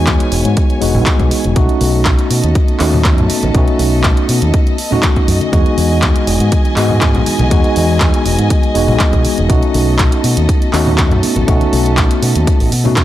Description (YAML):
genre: nu-disco, nu disco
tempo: 121 BPM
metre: 4/4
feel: straight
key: E major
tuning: A4 = 440 Hz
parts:
  - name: tine electric piano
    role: accompaniment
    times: 0.0-13.0 s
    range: G#3 to F#4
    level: -16 LUFS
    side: equal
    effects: medium stereo tremolo, sidechain pumping, low-pass filter, analog delay
  - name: warm studio string section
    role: sustained chords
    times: 0.0-13.0 s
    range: E3 to G#5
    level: -22 LUFS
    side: left 1 dB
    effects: sidechain pumping
  - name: fingered electric bass with an envelope filter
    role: bass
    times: 0.0-13.0 s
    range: E1 to B2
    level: -15 LUFS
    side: equal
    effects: sidechain pumping
  - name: electronic kick drum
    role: drums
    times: 0.1-13.0 s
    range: none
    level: -13 LUFS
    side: equal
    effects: overdrive
  - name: house drum kit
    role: drums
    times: 0.1-13.0 s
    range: handclaps, hi-hat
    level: -20 LUFS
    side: right 1 dB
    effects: overdrive
  - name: congas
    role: percussion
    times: 0.9-12.9 s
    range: none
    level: -21 LUFS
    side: equal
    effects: none
room: little or no reverb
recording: dry, gritty hardware recording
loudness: -10 LUFS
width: side -13 dB against mid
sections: 0.0-13.0 A section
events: none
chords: 0.0 Emaj7; 1.6 B7; 5.5 Emaj7; 9.5 B7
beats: 0.07 0.57 1.07 | 1.56 2.06 2.56 3.05 | 3.55 4.04 4.54 5.03 | 5.53 6.03 6.52 7.02 | 7.51 8.01 8.51 9.00 | 9.50 9.99 10.49 10.98 | 11.48 11.98 12.47 12.97